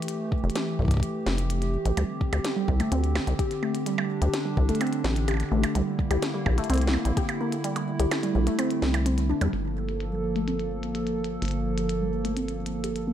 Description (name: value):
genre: IDM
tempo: 127 BPM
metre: 4/4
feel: straight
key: G dorian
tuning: A4 = 440 Hz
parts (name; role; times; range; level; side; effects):
- hollow soft pad; sustained chords; 0.0-13.1 s; D3 to A4; -30 LUFS; right 2 dB; chorus
- glitchy drum kit; drums; 0.0-13.1 s; hi-hat, percussion blips, snare drum; -33 LUFS; equal; low-pass filter on hats, studio reverb, low-pass filter on snare, low-pass filter on perc, digital delay
- electronic kick drum; drums; 0.3-7.3 s; none; -26 LUFS; equal; studio reverb
- deep acid bass; bass; 0.4-13.1 s; F1 to E2; -26 LUFS; equal; none
- warbly dusty pluck; arpeggios; 2.0-13.1 s; G3 to G4; -30 LUFS; equal; chorus, digital delay
room: light reverb, digital ambience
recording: none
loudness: -24 LUFS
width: side -10 dB against mid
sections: 0.0-9.5 A section; 9.5-13.1 B section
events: kick drops out 7.6-9.5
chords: 0.0 Fmaj9; 2.0 D7sus4; 5.8 C9; 9.5 Gm9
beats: | 0.08 0.56 1.03 1.50 | 1.97 2.44 2.92 3.39 | 3.86 4.33 4.81 5.28 | 5.75 6.22 6.70 7.17 | 7.64 8.11 8.59 9.06 | 9.53 10.00 10.48 10.95 | 11.42 11.89 12.37 12.84